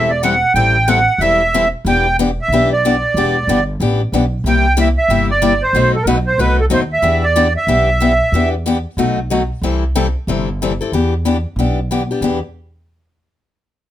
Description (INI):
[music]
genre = acoustic string swing (jazz manouche)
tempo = 185 BPM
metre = 4/4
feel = swing 60% on 8ths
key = E minor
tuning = A4 = 441 Hz
[part]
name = accordion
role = melody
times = 0.0-8.5 s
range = A4 to G5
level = -14 LUFS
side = right 2 dB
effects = light tremolo tuning
[part]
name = picked steel-string acoustic guitar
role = accompaniment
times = 0.0-12.4 s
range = B2 to A4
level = -17 LUFS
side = left 4 dB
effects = none
[part]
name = upright bass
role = bass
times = 0.0-12.4 s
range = E1 to E2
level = -18 LUFS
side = right 1 dB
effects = none
[sound]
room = light reverb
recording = close, detailed microphones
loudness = -13 LUFS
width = side -12 dB against mid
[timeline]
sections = 0.0-9.6 A section; 9.6-12.2 B section; 12.2-13.5 C section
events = none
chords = 0.0 Am7; 1.8 Em7; 4.4 C7; 5.7 B7b9; 7.0 Em7; 9.0 B7; 9.6 C6; 10.9 Em7